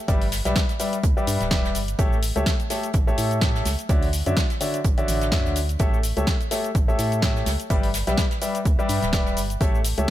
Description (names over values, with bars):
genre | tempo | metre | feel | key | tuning
piano house | 126 BPM | 4/4 | swing 56% on 16ths | A mixolydian | A4 = 440 Hz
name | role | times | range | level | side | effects
warm concert grand piano | riff | 0.1-10.1 s | D3 to E5 | -26 LUFS | left 2 dB | sidechain pumping, digital delay
organ-like FM bass | bass | 0.1-10.1 s | D1 to A2 | -26 LUFS | equal | sidechain pumping
electronic kick drum | drums | 0.1-9.7 s | none | -22 LUFS | equal | none
house drum kit | drums | 0.1-10.1 s | cabasa, hi-hat, snare drum | -29 LUFS | left 1 dB | none
soft brush drum kit | drums | 0.1-10.0 s | hi-hat, snare drum | -35 LUFS | right 2 dB | high-pass filter on hats, high-pass filter on snare, high-pass filter on room
room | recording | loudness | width
small room reverb | none | -20 LUFS | side -13 dB against mid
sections
0.0-10.1 A section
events
none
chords
0.1 Em7/G; 2.0 A7; 3.9 Dmaj9; 5.8 A7; 7.7 Em7/G